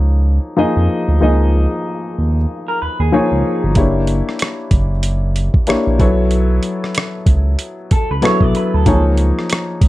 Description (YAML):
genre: R&B, neo-soul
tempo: 94 BPM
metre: 4/4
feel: swing 56% on 16ths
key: unclear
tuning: A4 = 441 Hz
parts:
  - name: warm baby grand piano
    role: accompaniment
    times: 0.0-9.9 s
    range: E#3 to E5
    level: -18 LUFS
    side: left 2 dB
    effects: plate reverb
  - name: smooth synth bass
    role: bass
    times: 0.0-9.9 s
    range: F#1 to E#2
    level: -15 LUFS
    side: equal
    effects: none
  - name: electric guitar through a small old amp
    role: second line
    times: 2.7-3.7, 7.9-9.0 s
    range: G#4 to D5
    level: -22 LUFS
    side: right 3 dB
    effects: wide subtle chorus, plate reverb
  - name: boom bap sampler-style drum kit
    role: drums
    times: 3.8-9.9 s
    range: hi-hat, kick drum, rim click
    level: -15 LUFS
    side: equal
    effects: none
room: light reverb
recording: dark, warm production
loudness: -13 LUFS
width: side -16 dB against mid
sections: 0.0-9.9 A section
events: none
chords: 0.0 C#add9; 3.8 F#7b9b13; 6.0 B9sus4; 8.9 C#add9